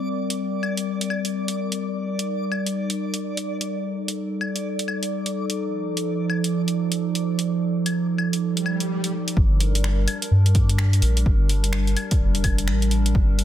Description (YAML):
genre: future garage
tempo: 127 BPM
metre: 4/4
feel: swing 62% on 16ths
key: G minor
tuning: A4 = 437 Hz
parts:
  - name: warbly tape-like pad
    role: sustained chords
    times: 0.0-13.4 s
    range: F3 to Bb4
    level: -25 LUFS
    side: equal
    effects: chorus, built-in reverb, sidechain pumping
  - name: backwards swelling texture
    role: texture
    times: 0.0-9.4 s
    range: D5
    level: -34 LUFS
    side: right 4 dB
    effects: built-in reverb
  - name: deep house drum kit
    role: drums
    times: 0.3-13.4 s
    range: claves, finger snaps, hi-hat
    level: -28 LUFS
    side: left 1 dB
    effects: overdrive, soft clipping on snare
  - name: swell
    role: sound effects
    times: 8.5-9.4 s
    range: none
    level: -31 LUFS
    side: left 2 dB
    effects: none
  - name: soft dub sub bass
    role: bass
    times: 9.4-13.4 s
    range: F1 to G2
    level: -20 LUFS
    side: equal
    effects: sidechain pumping
  - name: electronic kick drum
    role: drums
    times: 9.4-13.3 s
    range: none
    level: -20 LUFS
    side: equal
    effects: overdrive
room: light reverb, digital ambience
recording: dense, heavily limited modern master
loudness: -20 LUFS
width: side -11 dB against mid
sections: 0.0-9.4 A section; 9.4-13.4 B section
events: filter sweep on ambient pad 0.0-9.4; swell 8.5-9.4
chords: 0.0 Gm; 1.8 Eb; 5.6 F7; 9.4 Gm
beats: 0.39 0.86 1.34 | 1.81 2.28 2.75 3.23 | 3.70 4.17 4.64 5.12 | 5.59 6.06 6.53 7.01 | 7.48 7.95 8.42 8.90 | 9.37 9.84 10.31 10.79 | 11.26 11.73 12.20 12.68 | 13.15